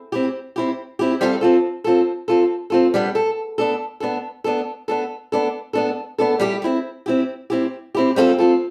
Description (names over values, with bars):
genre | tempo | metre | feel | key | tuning
highlife | 138 BPM | 4/4 | swing 54% on 16ths | G mixolydian | A4 = 440 Hz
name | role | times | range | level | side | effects
picked old ladder-braced acoustic guitar | solo | 0.1-8.5 s | G3 to A4 | -20 LUFS | equal | slapback echo
room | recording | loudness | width
moderate studio ambience, RT60 0.5 s | band playing live in one room | -20 LUFS | mono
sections
0.0-8.7 A section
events
none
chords
0.0 C; 1.2 F; 2.9 Gadd9 (rootless); 6.4 C; 8.2 Fadd9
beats
0.34 0.77 | 1.21 1.64 2.08 2.51 | 2.95 3.38 3.82 4.25 | 4.69 5.12 5.56 5.99 | 6.43 6.86 7.30 7.73 | 8.17